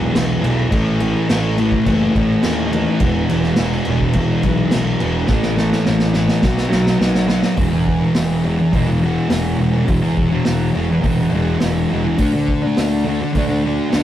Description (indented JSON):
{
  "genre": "garage rock duo or trio",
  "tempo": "104 BPM",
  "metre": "4/4",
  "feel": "straight",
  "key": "unclear",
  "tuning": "A4 = 439 Hz",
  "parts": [
    { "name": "fuzz guitar", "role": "riff", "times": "0.0-14.0 s", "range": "E2 to D4", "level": "-17 LUFS", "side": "equal", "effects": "distortion" },
    { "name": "fuzz picked electric bass", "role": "bass", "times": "0.0-14.0 s", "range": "E1 to D#2", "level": "-22 LUFS", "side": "equal", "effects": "overdrive" },
    { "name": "vintage drum kit", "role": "drums", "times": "0.2-14.0 s", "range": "crash cymbal, hi-hat, kick drum, snare drum", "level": "-21 LUFS", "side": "equal", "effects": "none" }
  ],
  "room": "moderate studio reverb, RT60 0.5 s",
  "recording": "rough rehearsal-room recording, warm saturation",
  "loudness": "-14 LUFS",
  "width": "side -12 dB against mid",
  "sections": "0.0-7.6 A section; 7.6-14.0 B section",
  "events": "drum fill 5.3-7.6",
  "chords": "0.0 E5; 0.7 A5; 3.0 E5; 5.3 A5; 6.4 B5; 7.6 E5; 12.2 D5"
}